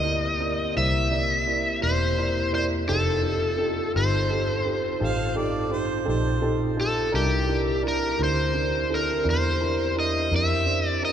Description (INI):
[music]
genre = blues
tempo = 56 BPM (dotted quarters)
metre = 12/8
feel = straight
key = C mixolydian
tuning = A4 = 440 Hz
[part]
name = overdriven slide guitar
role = melody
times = 0.0-11.1 s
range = G4 to E5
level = -26 LUFS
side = left 1 dB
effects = none
[part]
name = dark upright piano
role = accompaniment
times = 0.0-11.1 s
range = D4 to D5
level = -29 LUFS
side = right 3 dB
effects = none
[part]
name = mellow tonewheel organ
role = sustained chords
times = 0.0-11.1 s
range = Bb3 to Bb4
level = -32 LUFS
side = equal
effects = slow rotary speaker
[part]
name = vintage muted fingered electric bass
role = bass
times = 0.0-11.1 s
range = E1 to F2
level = -27 LUFS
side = left 1 dB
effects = none
[part]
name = clear harmonica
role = second line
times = 5.0-6.6 s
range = C5 to F5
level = -35 LUFS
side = right 2 dB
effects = overdrive
[sound]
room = wet cathedral reverb, RT60 5.9 s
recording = recorded in a church or concert hall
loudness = -22 LUFS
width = side -9 dB against mid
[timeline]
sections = 0.0-11.1 A section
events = none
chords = 0.0 C7; 2.9 F7; 7.1 C7